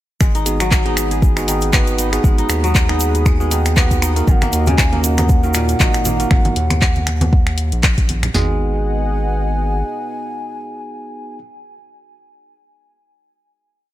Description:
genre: afro house.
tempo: 118 BPM.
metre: 4/4.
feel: swing 56% on 16ths.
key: G# minor.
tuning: A4 = 438 Hz.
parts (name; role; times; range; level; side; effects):
warm analog pad; sustained chords; 0.2-11.4 s; B3 to D#6; -29 LUFS; left 1 dB; chorus, sidechain pumping.
kora; arpeggios; 0.2-10.4 s; A#2 to G#4; -24 LUFS; left 2 dB; sidechain pumping, tape echo.
round analog bass; bass; 0.2-9.8 s; G#1 to D#2; -19 LUFS; equal; sidechain pumping.
afro-pop drum kit; drums; 0.2-8.5 s; kick drum, snare drum, toms; -15 LUFS; equal; none.
afro-pop drum kit; drums; 0.2-8.3 s; finger snaps, handclaps, hi-hat; -21 LUFS; left 1 dB; none.
egg shaker; percussion; 0.2-6.3 s; none; -28 LUFS; right 4 dB; none.
bell-like tine electric piano; stabs; 0.5-11.4 s; A#3 to D#5; -24 LUFS; right 4 dB; sidechain pumping, tape echo.
hollow bansuri; melody; 4.3-11.4 s; F#5 to G#5; -27 LUFS; equal; tape echo.
congas; percussion; 4.3-8.3 s; none; -23 LUFS; right 1 dB; none.
room: small room ambience.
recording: none.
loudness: -14 LUFS.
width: side -14 dB against mid.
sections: 0.2-8.3 drop; 8.3-12.4 final chord.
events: drop 0.2-8.3.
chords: 0.2 G#m7; 4.3 D#m/G#; 8.3 G#m7.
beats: | 0.21 0.72 1.23 1.73 | 2.24 2.75 3.26 3.77 | 4.28 4.79 5.29 5.80 | 6.31 6.82 7.33 7.84 | 8.35 8.85 9.36 9.87 | 10.38 10.89.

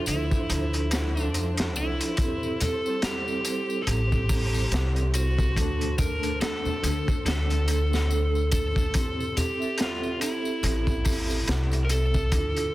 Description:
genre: trip hop.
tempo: 71 BPM.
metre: 4/4.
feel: swing 58% on 16ths.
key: A minor.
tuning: A4 = 440 Hz.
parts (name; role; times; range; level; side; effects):
overdriven slide guitar; melody; 0.0-12.7 s; E4 to Bb4; -31 LUFS; equal; vintage 12-bit sampler grit, tape echo.
vibraphone with medium mallets; accompaniment; 0.0-12.7 s; F3 to E5; -31 LUFS; right 2 dB; tremolo, tape echo.
flickering grainy texture; texture; 0.0-12.7 s; C5; -44 LUFS; right 1 dB; built-in reverb.
upright bass; bass; 0.1-12.7 s; A1 to F2; -26 LUFS; equal; none.
crunchy breakbeat drum kit; drums; 0.1-12.7 s; hi-hat, kick drum, snare drum; -28 LUFS; equal; none.
tambourine and congas; percussion; 0.1-12.7 s; none; -36 LUFS; left 1 dB; none.
room: small room ambience.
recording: dense, heavily limited modern master.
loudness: -23 LUFS.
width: side -17 dB against mid.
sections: 0.0-12.7 A section.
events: none.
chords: 0.0 Dmadd9; 2.2 Am7; 5.6 D; 8.9 Am7.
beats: 0.49 1.34 | 2.18 3.03 3.87 4.72 | 5.56 6.41 7.25 8.10 | 8.95 9.79 10.63 11.48 | 12.32.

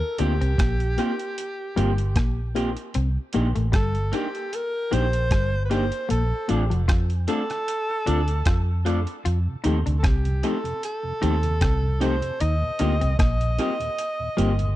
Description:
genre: lovers rock reggae.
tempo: 76 BPM.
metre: 4/4.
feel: swing 55% on 16ths.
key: unclear.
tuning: A4 = 441 Hz.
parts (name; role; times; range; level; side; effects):
clear alto saxophone; melody; 0.0-14.8 s; G4 to Eb5; -29 LUFS; equal; tape echo.
FM electric piano with auto-pan; accompaniment; 0.2-14.5 s; A3 to G4; -28 LUFS; left 3 dB; none.
semi-hollow electric guitar; riff; 0.2-14.6 s; F3 to F4; -31 LUFS; left 6 dB; none.
electric guitar through a small old amp; stabs; 0.2-14.5 s; Bb3 to D5; -31 LUFS; right 2 dB; spring reverb.
vintage muted fingered electric bass; bass; 0.2-14.8 s; F1 to F2; -23 LUFS; equal; none.
lo-fi sampler-style drum kit; drums; 0.2-14.8 s; hi-hat, kick drum, rim click; -24 LUFS; equal; tape echo.
mellow tonewheel organ; accompaniment; 9.5-14.7 s; Eb2 to Eb4; -34 LUFS; right 4 dB; none.
room: digital ambience.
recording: dry, close 1970s-style studio recording.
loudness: -21 LUFS.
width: side -15 dB against mid.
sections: 0.0-14.8 A section.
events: none.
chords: 0.0 Eb6; 2.9 Cm7; 6.1 Bbmaj7 (rootless); 9.2 F7; 12.4 Eb6.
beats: 0.58 1.37 2.16 | 2.95 3.73 4.52 5.31 | 6.10 6.88 7.67 8.46 | 9.25 10.04 10.82 11.61 | 12.40 13.19 13.98.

